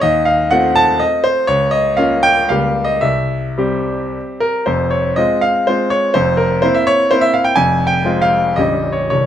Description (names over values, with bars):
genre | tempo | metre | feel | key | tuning
classical, romantic triple-time dance for piano with dotted rhythms | 105-135 BPM | 3/4 | rubato | F minor | A4 = 440 Hz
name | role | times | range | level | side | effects
clear grand piano | solo | 0.0-9.3 s | Bb0 to A5 | -12 LUFS | equal | none
room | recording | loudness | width
light reverb | close, detailed microphones | -12 LUFS | side -10 dB against mid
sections
0.0-4.7 A section; 4.7-9.3 B section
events
none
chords
0.0 F7/Eb; 1.5 Bbm/Db; 3.0 C; 4.7 Fm; 6.1 C7/F; 7.6 Fm; 8.6 Gdim/Bb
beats
| 0.03 0.51 1.01 | 1.48 1.98 2.50 | 3.03 3.59 4.15 | 4.67 5.17 5.68 | 6.15 6.63 7.11 | 7.56 8.05 8.57 | 9.10